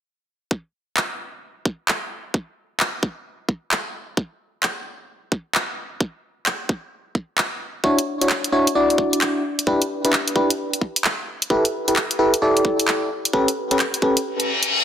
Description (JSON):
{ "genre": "UK garage, two-step garage", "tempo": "131 BPM", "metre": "4/4", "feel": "swing 64% on 16ths", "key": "D major", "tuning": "A4 = 435 Hz", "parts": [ { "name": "electronic kick drum", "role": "drums", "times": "0.5-14.1 s", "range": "none", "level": "-21 LUFS", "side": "equal", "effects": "high-pass filter on kick" }, { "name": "garage drum kit", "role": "drums", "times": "1.0-14.7 s", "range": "handclaps, hi-hat", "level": "-22 LUFS", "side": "equal", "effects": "none" }, { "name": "FM electric piano", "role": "stabs", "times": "7.8-14.2 s", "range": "C#4 to D5", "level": "-19 LUFS", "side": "equal", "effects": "chorus, digital delay" }, { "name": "reverse cymbal", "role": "sound effects", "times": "14.4-14.8 s", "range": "none", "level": "-19 LUFS", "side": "left 2 dB", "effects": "none" } ], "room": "moderate plate reverb, RT60 1.4 s, digital ambience", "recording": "dense, heavily limited modern master", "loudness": "-20 LUFS", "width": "side -9 dB against mid", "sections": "0.5-14.8 A section", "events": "reverse cymbal 14.4-14.8", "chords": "0.5 N.C.; 7.8 Dmaj9; 9.4 Em7; 11.5 G69; 13.1 A9" }